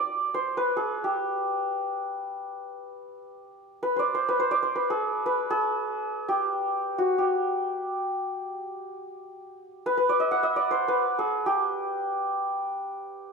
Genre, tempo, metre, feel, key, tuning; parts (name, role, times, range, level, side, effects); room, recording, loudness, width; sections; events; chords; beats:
Persian modal ensemble; free time; G dastgah chahargah; A4 = 440 Hz
santur; solo; 0.0-13.3 s; F#4 to F#5; -25 LUFS; equal
moderate recital hall reverb, RT60 1.5 s; dark, warm production; -25 LUFS; side -4 dB against mid
0.0-13.1 A section
free time